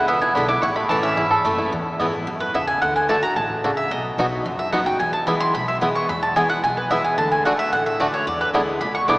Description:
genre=bluegrass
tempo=220 BPM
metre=4/4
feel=straight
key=unclear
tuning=A4 = 440 Hz
part: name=bluegrass banjo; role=melody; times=0.0-9.1 s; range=E3 to A4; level=-23 LUFS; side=right 1 dB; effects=none
part: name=picked steel-string acoustic guitar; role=accompaniment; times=0.0-9.2 s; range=E2 to F#4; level=-24 LUFS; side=left 1 dB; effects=none
part: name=mandolin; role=stabs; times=0.0-9.2 s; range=B4 to D6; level=-21 LUFS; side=equal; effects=none
part: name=upright bass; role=bass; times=0.0-9.2 s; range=F#1 to G#2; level=-34 LUFS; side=equal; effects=none
room=wet cathedral reverb, RT60 6.5 s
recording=recorded in a church or concert hall, small speaker sound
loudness=-18 LUFS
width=side -22 dB against mid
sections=0.0-1.7 A section; 1.7-9.2 A section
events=mandolin solo 0.0-9.2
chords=0.0 E7; 0.6 A; 1.7 E; 2.8 D; 3.9 B; 5.0 E; 7.2 D; 8.3 E7

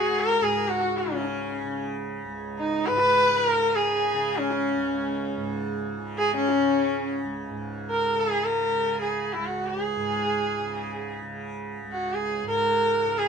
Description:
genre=indian classical, Hindustani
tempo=free time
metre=none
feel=none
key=C# raga kafi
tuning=A4 = 440 Hz
part: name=rich sarangi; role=melody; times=0.0-13.3 s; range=C#4 to B4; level=-23 LUFS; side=equal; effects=none
part: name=clear sarangi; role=second line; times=0.0-7.3 s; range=C#4 to B4+20c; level=-32 LUFS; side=left 4 dB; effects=none
part: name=tanpura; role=drone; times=0.0-13.3 s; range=C#2 to C#3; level=-32 LUFS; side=right 3 dB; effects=none
room=moderate studio reverb, RT60 0.6 s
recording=minimal, uncompressed stereo recording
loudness=-23 LUFS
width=side -6 dB against mid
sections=0.0-7.5 A section; 7.5-13.3 A section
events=none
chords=none

